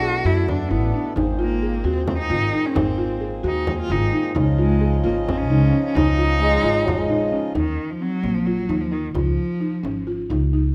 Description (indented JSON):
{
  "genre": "contemporary instrumental, chamber music in an uneven meter",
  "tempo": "263 BPM (eighths)",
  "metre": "7/8",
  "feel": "straight",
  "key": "unclear",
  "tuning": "A4 = 440 Hz",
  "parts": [
    { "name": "rich cello", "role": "melody", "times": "0.0-10.0 s", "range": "Eb3 to F#4", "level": "-27 LUFS", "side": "equal", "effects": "none" },
    { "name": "pedal harmonium", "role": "sustained chords", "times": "0.0-7.5 s", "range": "Bb2 to Eb4", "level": "-31 LUFS", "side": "equal", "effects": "none" },
    { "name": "buzzing marimba with soft mallets", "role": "arpeggios", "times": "0.0-10.7 s", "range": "Bb3 to Ab4", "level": "-26 LUFS", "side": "equal", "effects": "none" },
    { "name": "upright bass", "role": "bass", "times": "0.0-10.7 s", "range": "Ab1 to F#2", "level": "-25 LUFS", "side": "equal", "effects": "none" },
    { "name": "frame drum", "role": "percussion", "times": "0.0-10.5 s", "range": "none", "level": "-30 LUFS", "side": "equal", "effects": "none" },
    { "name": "mellow French horn", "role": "second line", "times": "6.4-7.6 s", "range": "Gb3 to Ab3", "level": "-24 LUFS", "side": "equal", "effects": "none" }
  ],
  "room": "light reverb",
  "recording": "close, detailed microphones",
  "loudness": "-21 LUFS",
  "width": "mono",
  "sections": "0.0-7.6 A section; 7.6-10.7 B section",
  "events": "none",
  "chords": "0.0 Bm7; 1.2 Abadd9; 4.4 Dbadd9; 7.6 Eb5; 9.2 Db"
}